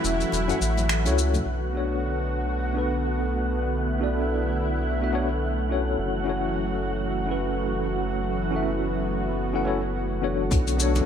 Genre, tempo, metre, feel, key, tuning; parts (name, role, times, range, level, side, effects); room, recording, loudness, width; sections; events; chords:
sunset chillout; 106 BPM; 4/4; swing 57% on 16ths; B minor; A4 = 440 Hz
tine electric piano; accompaniment; 0.0-11.1 s; B3 to F#5; -28 LUFS; moving between left 7 dB and right 6 dB; overdrive, fast stereo tremolo, auto-pan, ping-pong delay
lush unison pad; sustained chords; 0.0-11.1 s; D3 to F#4; -28 LUFS; equal; chorus
round analog bass; bass; 0.0-11.0 s; E1 to C#2; -28 LUFS; equal
jazz brush drum kit; drums; 0.0-1.4, 10.5-11.1 s; finger snaps, hi-hat, shaker; -30 LUFS; left 3 dB
wind-like tuned noise texture; texture; 0.0-10.5 s; F#5; -36 LUFS; right 1 dB; built-in reverb
congas; percussion; 0.3-1.4, 10.5-11.1 s; -34 LUFS; left 4 dB
electronic kick drum; drums; 10.5-10.6 s; -24 LUFS; equal; overdrive
light reverb, small room reverb; -23 LUFS; side -8 dB against mid
0.0-1.5 A section; 1.5-10.5 B section
break 0.0-1.5
0.0 F#m7; 1.5 Bm9; 6.0 F#m7